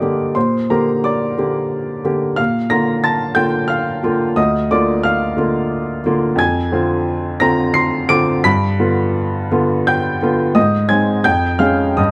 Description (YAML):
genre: classical, romantic character piece for solo piano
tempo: 88 BPM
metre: 3/4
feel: uneven beats, rubato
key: unclear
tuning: A4 = 438 Hz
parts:
  - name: clear baby grand piano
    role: solo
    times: 0.0-12.1 s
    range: D2 to D7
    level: -16 LUFS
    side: equal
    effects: none
room: light reverb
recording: dark, warm production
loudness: -17 LUFS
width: mono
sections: 0.0-12.1 A section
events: none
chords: 0.4 Gm/Bb; 2.4 Bb; 4.4 Bb/D; 6.4 Dm7b5/F; 8.5 G7; 10.6 Ab; 11.2 Db/F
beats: | 0.35 1.03 1.71 | 2.38 3.05 3.71 | 4.37 5.04 5.71 | 6.38 7.06 7.76 | 8.46 9.16 9.88 | 10.56 11.25 11.98